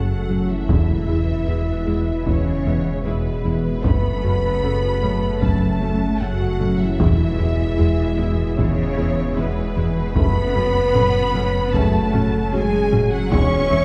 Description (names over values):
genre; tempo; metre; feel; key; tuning
cinematic, hybrid orchestral and electronic film score; 76 BPM; 4/4; straight; F# minor; A4 = 439 Hz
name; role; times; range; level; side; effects
rich symphonic violin section; melody; 0.0-13.8 s; B4 to C#6; -37 LUFS; equal; none
rich symphonic violin section; second line; 0.0-13.8 s; B4 to C#6; -34 LUFS; equal; none
mellow French horn section; sustained chords; 0.0-13.8 s; B3 to C#5; -27 LUFS; equal; none
mellow trombone section; sustained chords; 0.0-13.6 s; B2 to A3; -33 LUFS; equal; none
phased analog pad; sustained chords; 0.0-13.8 s; F#3 to F#5; -34 LUFS; equal; phaser, chorus, tremolo
harp-like synth pluck; arpeggios; 0.0-13.8 s; E3 to F#4; -33 LUFS; equal; none
smooth synth bass; riff; 0.0-13.8 s; E2 to F#3; -26 LUFS; equal; none
rich symphonic cello section; bass; 0.0-13.8 s; B2 to C#4; -31 LUFS; equal; none
saturated sub bass; bass; 0.0-13.8 s; E1 to F#1; -30 LUFS; equal; none
warm symphonic viola section; accompaniment; 0.3-13.8 s; F#3 to A4; -34 LUFS; equal; none
warm symphonic double bass section; bass; 0.3-13.8 s; E2 to F#2; -30 LUFS; equal; none
solo taiko drums; drums; 0.7-13.8 s; none; -25 LUFS; equal; none
room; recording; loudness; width
wet concert hall reverb, RT60 2.2 s; heard from further back in the room; -20 LUFS; mono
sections
0.0-13.8 A section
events
none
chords
0.0 F#m; 0.7 E; 3.8 F#m; 7.0 E; 10.2 F#m; 13.3 E